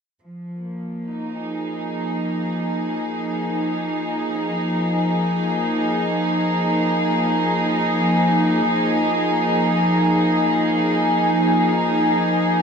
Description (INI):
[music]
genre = ambient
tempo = free time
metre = none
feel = none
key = unclear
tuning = A4 = 440 Hz
[part]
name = warm studio string section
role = sustained chords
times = 0.2-12.6 s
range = F3 to Ab4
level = -18 LUFS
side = equal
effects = none
[sound]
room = wet shimmer reverb, RT60 8.0 s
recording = dark, warm production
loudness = -18 LUFS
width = side -6 dB against mid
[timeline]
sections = 0.2-12.6 A section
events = fade-in on string section 0.2-12.6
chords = 0.2 Bb5